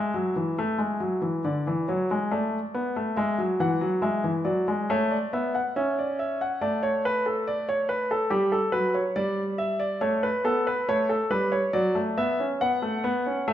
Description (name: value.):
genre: classical, baroque-style two-part invention for grand piano.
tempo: 70 BPM.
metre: 4/4.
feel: straight.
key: D major.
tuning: A4 = 440 Hz.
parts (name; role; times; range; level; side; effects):
warm grand piano; solo; 0.0-13.5 s; D3 to F#5; -24 LUFS; equal; none.
room: wet recital hall reverb, RT60 1.5 s.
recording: none.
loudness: -24 LUFS.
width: side -11 dB against mid.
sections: 0.0-13.5 A section.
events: none.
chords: 0.0 A5; 1.4 D5; 3.2 E7; 4.9 A; 6.6 D5/A; 8.3 G; 10.0 A7; 11.7 D/F#.